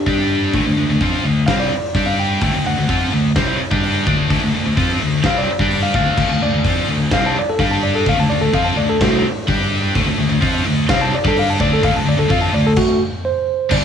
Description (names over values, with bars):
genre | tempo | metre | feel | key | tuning
hard rock | 127 BPM | 4/4 | straight | unclear | A4 = 439 Hz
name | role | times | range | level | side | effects
bell-like tine electric piano | melody | 0.0-13.8 s | A3 to A5 | -20 LUFS | equal | medium stereo tremolo, analog delay
scooped high-gain guitar | riff | 0.1-13.8 s | G2 to G4 | -18 LUFS | left 1 dB | distortion, cassette tape
fingered electric bass | bass | 0.1-13.8 s | G1 to G2 | -20 LUFS | equal | none
big rock drum kit | drums | 0.1-13.8 s | crash cymbal, hi-hat, kick drum, snare drum | -21 LUFS | equal | cassette tape
room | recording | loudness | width
light reverb | home recording on cassette | -14 LUFS | side -8 dB against mid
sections
0.0-13.7 A section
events
tine electric piano solo 0.0-13.7; stop 12.8-13.7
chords
0.1 G5; 0.5 D5; 1.9 G5; 2.4 D5; 7.6 G5; 8.1 D5; 9.5 G5; 10.0 D5